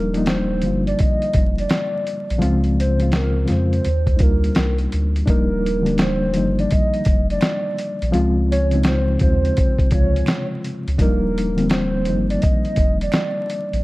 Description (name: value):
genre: lo-fi hip hop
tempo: 84 BPM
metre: 4/4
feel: swing 65% on 16ths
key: Eb major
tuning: A4 = 440 Hz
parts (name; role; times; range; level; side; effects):
- warbly nostalgic lead; melody; 0.0-13.8 s; Bb4 to Eb5; -25 LUFS; right 1 dB; chorus, low-pass filter
- reed electric piano; accompaniment; 0.0-13.8 s; C3 to F4; -22 LUFS; left 1 dB; fast tremolo, cassette tape, low-pass filter
- soft dub sub bass; bass; 0.0-13.8 s; Eb1 to F2; -21 LUFS; equal; none
- dusty soul sampler-style drum kit; drums; 0.1-13.8 s; hi-hat, kick drum, snare drum; -20 LUFS; equal; none
- finger snap; percussion; 6.0-13.3 s; none; barely audible; none; none
room: light reverb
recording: dark, warm production, vinyl crackle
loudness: -16 LUFS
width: side -20 dB against mid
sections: 0.0-5.3 A section; 5.3-13.8 B section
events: none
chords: 0.0 Ebmaj9; 2.4 Dbmaj7; 3.8 Ebmaj9; 8.1 Dbmaj7; 11.0 Ebmaj9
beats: 0.28 0.99 1.70 | 2.42 3.13 3.85 4.56 | 5.28 5.99 6.70 7.42 | 8.13 8.85 9.56 10.28 | 10.99 11.70 12.42 13.13